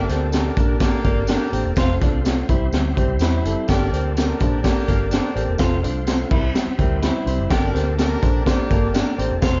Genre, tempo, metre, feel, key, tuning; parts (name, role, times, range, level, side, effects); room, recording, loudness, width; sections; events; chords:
uptempo 1960s-style soul; 125 BPM; 4/4; straight; G dorian; A4 = 437 Hz
clear horn section; second line; 0.0-9.3 s; Bb3 to D5; -32 LUFS; equal
dark upright piano; accompaniment; 0.0-9.6 s; G3 to D5; -28 LUFS; equal
percussive tonewheel organ; sustained chords; 0.0-9.6 s; G4 to C6; -39 LUFS; equal
vintage muted fingered electric bass; bass; 0.0-9.6 s; E1 to E2; -26 LUFS; equal
electric guitar through a small old amp; riff; 0.1-9.6 s; Bb3 to G4; -31 LUFS; equal
raw garage drum kit; drums; 0.1-9.5 s; crash cymbal, hi-hat, kick drum, snare drum; -23 LUFS; equal
tambourine; percussion; 0.3-9.5 s; -44 LUFS; equal
light reverb; dark, warm production, nothing above 7.5 kHz; -20 LUFS; mono
0.0-9.6 A section
0.0 Gmadd9; 1.8 F; 2.5 C; 3.7 Gmadd9; 5.6 F; 6.3 C; 7.5 Gmadd9